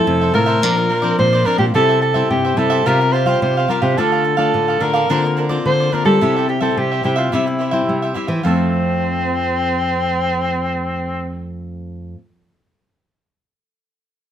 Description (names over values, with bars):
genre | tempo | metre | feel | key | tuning
samba | 108 BPM | 4/4 | straight | F major | A4 = 440 Hz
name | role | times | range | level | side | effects
breathy soprano saxophone | melody | 0.0-11.4 s | C4 to C5 | -18 LUFS | equal | none
cavaquinho | accompaniment | 0.0-12.2 s | D4 to F5 | -22 LUFS | right 4 dB | none
nylon-string guitar | accompaniment | 0.0-12.2 s | G2 to F4 | -22 LUFS | left 3 dB | none
nylon-string guitar | bass | 0.1-12.1 s | F2 to G3 | -20 LUFS | equal | none
room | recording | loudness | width
moderate studio reverb, RT60 0.9 s | none | -14 LUFS | side -10 dB against mid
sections
0.0-8.4 A section; 8.4-10.7 B section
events
none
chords
0.0 Fmaj7; 0.6 Bbadd9; 1.7 C; 2.9 Fsus2/C; 4.0 Dm; 5.1 Bbadd9/D; 6.2 C; 8.4 Fmaj7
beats
0.07 0.63 1.19 | 1.75 2.31 2.86 3.42 | 3.98 4.54 5.10 5.66 | 6.21 6.77 7.33 7.89 | 8.45 9.01 9.56 10.12